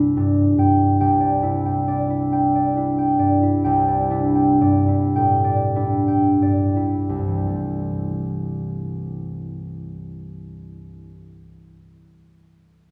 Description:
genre	classical, solo harp piece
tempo	28-49 BPM (dotted quarters)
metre	6/8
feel	rubato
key	C major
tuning	A4 = 437 Hz
part	concert harp	solo	0.0-11.6 s	C2 to G5	-20 LUFS	equal	none
room	wet church reverb, RT60 3.6 s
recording	heard from further back in the room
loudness	-20 LUFS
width	mono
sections	0.0-1.0 A section; 1.0-7.1 B section; 7.1-10.7 C section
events	slowing down 0.0-7.1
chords	0.0 Cadd9; 7.1 C6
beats	| 1.00 2.30 | 3.63 5.14 | 7.07 8.89

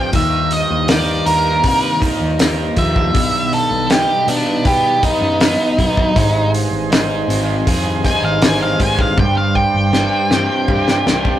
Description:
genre	psychedelic rock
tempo	80 BPM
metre	4/4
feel	straight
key	unclear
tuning	A4 = 444 Hz
part	octave-fuzz lead guitar	melody	0.0-11.4 s	D4 to Ab5	-17 LUFS	right 1 dB	distortion
part	combo organ	sustained chords	0.0-11.4 s	Eb3 to C5	-24 LUFS	right 4 dB	none
part	crunchy overdriven guitar	riff	0.0-11.4 s	G2 to B4	-20 LUFS	equal	harmonic tremolo
part	pedal harmonium	drone	0.0-11.4 s	G2	-27 LUFS	left 3 dB	none
part	picked electric bass	bass	0.1-11.4 s	G1 to C3	-22 LUFS	equal	none
part	cloth-damped thuddy drum kit	drums	0.1-11.4 s	hi-hat, kick drum, snare drum, toms	-18 LUFS	equal	none
room	moderate studio reverb, RT60 0.5 s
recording	rough rehearsal-room recording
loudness	-13 LUFS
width	side -12 dB against mid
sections	0.0-11.4 A section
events	lead electric guitar solo 0.0-11.4; drum fill 9.2-11.4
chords	0.1 Ebsus2; 3.1 B; 6.2 Ab; 9.2 Gsus4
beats	| 0.14 0.89 1.64 2.39 | 3.15 3.90 4.65 5.40 | 6.16 6.91 7.67 8.42 | 9.17 9.93 10.68

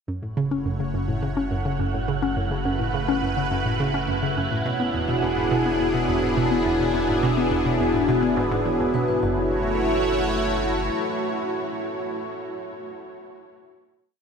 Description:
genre	ambient, sequencer-driven space music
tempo	105 BPM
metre	4/4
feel	straight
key	F# minor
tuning	A4 = 441 Hz
part	lush unison pad	sustained chords	0.1-12.3 s	A3 to C#5	-26 LUFS	equal	chorus, phaser
part	hollow square pluck	riff	0.1-9.5 s	E2 to C#4	-25 LUFS	equal	chorus, analog delay
part	warm sub bass	bass	0.1-10.9 s	E1 to F#1	-33 LUFS	equal	none
part	wind-like tuned noise texture	texture	0.9-9.2 s	F#5	-32 LUFS	right 6 dB	built-in reverb, lush chorus
part	vibraphone with soft mallets	arpeggios	4.7-14.0 s	E4 to C#5	-27 LUFS	moving between left 2 dB and right 4 dB	auto-pan, analog delay
room	wet huge ambient reverb, RT60 7.9 s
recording	dreamy mix soaked in reverb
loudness	-21 LUFS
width	side -6 dB against mid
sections	0.1-9.2 A section; 9.2-11.5 final chord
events	fade-in on analog synth pad 0.1-9.2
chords	0.1 F#m7; 4.7 E7; 9.2 F#m7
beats	| 0.08 0.65 1.23 1.80 | 2.37 2.94 3.51 4.08 | 4.65 5.23 5.80 6.37 | 6.94 7.51 8.08 8.65 | 9.23 9.80 10.37 10.94

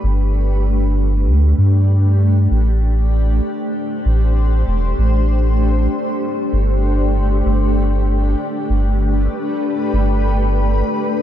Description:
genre	ambient dub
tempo	97 BPM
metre	4/4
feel	straight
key	unclear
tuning	A4 = 440 Hz
part	granular cloud pad	sustained chords	0.0-11.2 s	A3 to C5	-20 LUFS	left 1 dB	built-in reverb
part	soft dub sub bass	bass	0.0-10.8 s	E1 to G2	-14 LUFS	equal	tube saturation
room	light reverb, digital ambience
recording	none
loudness	-14 LUFS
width	side -11 dB against mid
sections	0.0-11.2 A section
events	fade-in on ambient pad 0.0-11.2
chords	0.0 Gadd9; 2.5 Am; 7.5 Gadd9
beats	| 0.03 0.65 1.27 1.89 | 2.51 3.12 3.74 4.36 | 4.98 5.60 6.22 6.84 | 7.46 8.07 8.69 9.31 | 9.93 10.55 11.17

